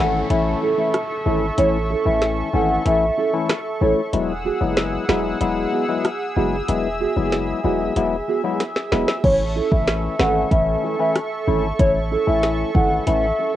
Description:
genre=dancehall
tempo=94 BPM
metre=4/4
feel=straight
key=unclear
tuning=A4 = 436 Hz
part: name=hollow clarinet-like synth lead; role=melody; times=0.0-3.9, 9.2-13.5 s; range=C#5 to F#5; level=-22 LUFS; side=equal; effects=chorus, cassette tape, tape echo, plate reverb
part: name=percussive organ stab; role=accompaniment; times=0.0-13.3 s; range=E3 to E4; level=-24 LUFS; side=left 6 dB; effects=chorus, sidechain pumping, cassette tape, plate reverb
part: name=warm analog pad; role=sustained chords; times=0.0-13.6 s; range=G#4 to E6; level=-26 LUFS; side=right 2 dB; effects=chorus, tremolo, sidechain pumping, cassette tape, plate reverb
part: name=nylon-string guitar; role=arpeggios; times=0.0-13.5 s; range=B3 to A4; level=-26 LUFS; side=right 6 dB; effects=cassette tape, tape echo, plate reverb
part: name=hard-hitting 808-style bass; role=bass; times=0.0-13.3 s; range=E1 to A1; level=-24 LUFS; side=equal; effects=none
part: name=downlifter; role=sound effects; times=0.0-4.1 s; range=none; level=-40 LUFS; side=left 1 dB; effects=none
part: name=afro-pop drum kit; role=drums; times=0.3-13.2 s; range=crash cymbal, hi-hat, kick drum, rim click, snare drum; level=-21 LUFS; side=equal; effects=cassette tape
room=moderate small room reverb, RT60 0.5 s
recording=home recording on cassette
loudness=-18 LUFS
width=side -12 dB against mid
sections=0.0-13.6 A section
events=break 0.0-9.2; drum fill 8.6-9.2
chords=0.0 A; 4.1 Eadd9; 9.2 A

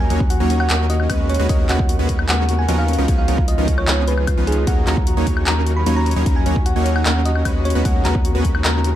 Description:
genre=future bass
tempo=151 BPM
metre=4/4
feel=half-time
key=Eb minor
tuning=A4 = 440 Hz
part: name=thumb-piano-like synth pluck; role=melody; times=0.0-8.9 s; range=Ab4 to Cb6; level=-25 LUFS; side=right 1 dB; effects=chorus, sidechain pumping, ping-pong delay
part: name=airy breathy pad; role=sustained chords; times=0.0-9.0 s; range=Db3 to Bb4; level=-31 LUFS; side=left 1 dB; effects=none
part: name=Celtic harp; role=arpeggios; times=0.0-9.0 s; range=Db4 to Cb5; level=-28 LUFS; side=left 6 dB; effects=sidechain pumping, digital delay
part: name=supersaw stab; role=riff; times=0.0-9.0 s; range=F3 to Db5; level=-23 LUFS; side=right 1 dB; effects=sidechain pumping
part: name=saturated sub bass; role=bass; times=0.0-9.0 s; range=Db2 to Eb2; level=-19 LUFS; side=equal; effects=sidechain pumping
part: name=pop drum kit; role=drums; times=0.1-8.9 s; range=handclaps, hi-hat, woodblock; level=-24 LUFS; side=left 1 dB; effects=none
part: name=electronic kick drum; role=drums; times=0.2-8.5 s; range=none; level=-19 LUFS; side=equal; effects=none
room=little or no reverb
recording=dark, warm production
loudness=-15 LUFS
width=side -12 dB against mid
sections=0.0-9.0 A section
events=none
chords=0.0 Ebm7; 1.3 Abm11/Eb; 2.9 Db9; 4.7 Ebm7; 7.7 Abm11/Eb

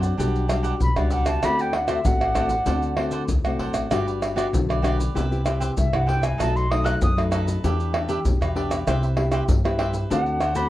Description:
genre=samba and choro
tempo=97 BPM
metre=4/4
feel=straight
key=G major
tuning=A4 = 441 Hz
part: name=cavaquinho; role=accompaniment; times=0.0-10.7 s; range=D4 to F#5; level=-31 LUFS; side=right 4 dB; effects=none
part: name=nylon-string guitar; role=accompaniment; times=0.0-10.7 s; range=F#2 to G4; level=-28 LUFS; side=left 3 dB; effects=none
part: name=upright bass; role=bass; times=0.0-10.6 s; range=G1 to G2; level=-26 LUFS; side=equal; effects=none
part: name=maracas, pandeiro, surdo and tamborim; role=percussion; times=0.0-10.7 s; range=none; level=-24 LUFS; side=equal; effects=none
part: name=silver concert flute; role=melody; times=0.8-10.7 s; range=D5 to F#6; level=-25 LUFS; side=equal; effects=plate reverb
room=moderate studio reverb, RT60 0.6 s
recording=worn, warbling old tape, cassette tape, warbly pitch drift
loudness=-20 LUFS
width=side -15 dB against mid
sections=0.0-10.7 A section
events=flute solo 0.0-10.7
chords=0.2 Gmaj7/B; 1.4 D7; 3.9 Gmaj7; 5.2 Cmaj7; 6.4 B7; 7.6 Em7; 8.9 Cmaj7; 10.1 D7

